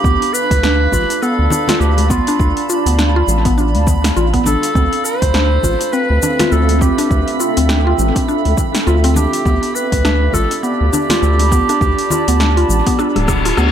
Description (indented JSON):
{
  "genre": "organic downtempo",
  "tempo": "102 BPM",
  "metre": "4/4",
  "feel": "swing 58% on 16ths",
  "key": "unclear",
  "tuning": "A4 = 439 Hz",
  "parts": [
    { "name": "clear clarinet", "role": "melody", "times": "0.0-13.6 s", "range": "F4 to C5", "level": "-20 LUFS", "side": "right 2 dB", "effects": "analog delay" },
    { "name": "granular cloud pad", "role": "sustained chords", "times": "0.0-13.7 s", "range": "C4 to B5", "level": "-22 LUFS", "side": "right 1 dB", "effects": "built-in reverb, sidechain pumping" },
    { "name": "mallet-like synth pluck", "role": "arpeggios", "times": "0.0-13.7 s", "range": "B3 to F4", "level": "-19 LUFS", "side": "equal", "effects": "chorus, analog delay" },
    { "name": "round analog bass", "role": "bass", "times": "0.0-13.7 s", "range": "D1 to D2", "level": "-15 LUFS", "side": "equal", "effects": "sidechain pumping" },
    { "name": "electronic kick drum", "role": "drums", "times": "0.0-13.4 s", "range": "none", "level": "-18 LUFS", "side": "equal", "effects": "overdrive" },
    { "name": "drifting glass-harmonics texture", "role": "texture", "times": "0.0-13.7 s", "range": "B5", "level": "-27 LUFS", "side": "right 8 dB", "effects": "chorus, built-in reverb" },
    { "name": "deep house drum kit", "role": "drums", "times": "0.1-13.7 s", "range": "hi-hat, rim click, shaker, snare drum", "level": "-21 LUFS", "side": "left 1 dB", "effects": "overdrive, analog delay" },
    { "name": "congas and bongos", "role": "percussion", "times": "0.9-13.4 s", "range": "none", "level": "-25 LUFS", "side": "left 4 dB", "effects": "none" },
    { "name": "reverse cymbal", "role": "sound effects", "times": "13.2-13.7 s", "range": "none", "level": "-20 LUFS", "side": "left 7 dB", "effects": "none" }
  ],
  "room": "light reverb, digital ambience",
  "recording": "echo-heavy mix",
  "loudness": "-12 LUFS",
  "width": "side -9 dB against mid",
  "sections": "0.0-13.7 A section",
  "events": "drum fill 13.0-13.7; reverse cymbal 13.2-13.7",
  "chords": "0.0 G9/A (rootless); 4.8 Dm7; 9.5 G7"
}